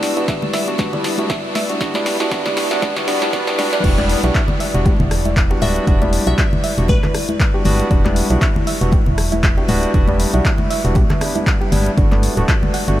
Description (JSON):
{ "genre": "deep house", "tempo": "118 BPM", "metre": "4/4", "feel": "swing 56% on 16ths", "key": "E minor", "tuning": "A4 = 439 Hz", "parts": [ { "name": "dark analog pad", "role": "sustained chords", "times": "0.0-13.0 s", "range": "G3 to E5", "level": "-26 LUFS", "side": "left 1 dB", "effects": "chorus, sidechain pumping" }, { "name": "barky tine electric piano", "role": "stabs", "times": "0.0-13.0 s", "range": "G3 to F#4", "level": "-22 LUFS", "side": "equal", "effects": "overdrive, sidechain pumping, tape echo" }, { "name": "punchy analog drum machine", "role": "drums", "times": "0.0-13.0 s", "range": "crash cymbal, handclaps, hi-hat, rim click, snare drum", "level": "-23 LUFS", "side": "left 1 dB", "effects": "high-pass filter on snare, high-pass filter on hats, high-pass filter on cymbals" }, { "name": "soft string machine", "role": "texture", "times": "0.0-3.9 s", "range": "E6", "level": "-36 LUFS", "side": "equal", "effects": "none" }, { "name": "soft round pluck", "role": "arpeggios", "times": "0.2-12.9 s", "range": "D4 to F#5", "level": "-26 LUFS", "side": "right 3 dB", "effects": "chorus, cassette tape, sidechain pumping, tape echo" }, { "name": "electronic kick drum", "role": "drums", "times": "0.3-12.6 s", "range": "none", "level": "-17 LUFS", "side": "equal", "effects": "none" }, { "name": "congas and bongos", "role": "percussion", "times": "0.4-12.7 s", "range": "none", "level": "-25 LUFS", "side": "left 2 dB", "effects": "none" }, { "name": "organ-like FM bass", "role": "bass", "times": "3.8-13.0 s", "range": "D1 to B1", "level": "-18 LUFS", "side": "equal", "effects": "sidechain pumping" }, { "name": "glassy wavetable pluck", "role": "melody", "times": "5.6-7.4 s", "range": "B4 to E5", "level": "-29 LUFS", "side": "left 2 dB", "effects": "chorus, tape echo" } ], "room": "moderate huge ambient reverb, RT60 6.3 s", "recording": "dreamy mix soaked in reverb, vinyl crackle, high-pass filter", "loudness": "-14 LUFS", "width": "side -14 dB against mid", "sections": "0.0-3.8 A section; 3.8-13.0 B section", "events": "build-up 0.0-3.8; drum fill 0.0-3.8; drop 3.8-13.0", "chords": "0.0 Em7; 12.0 Gmaj7" }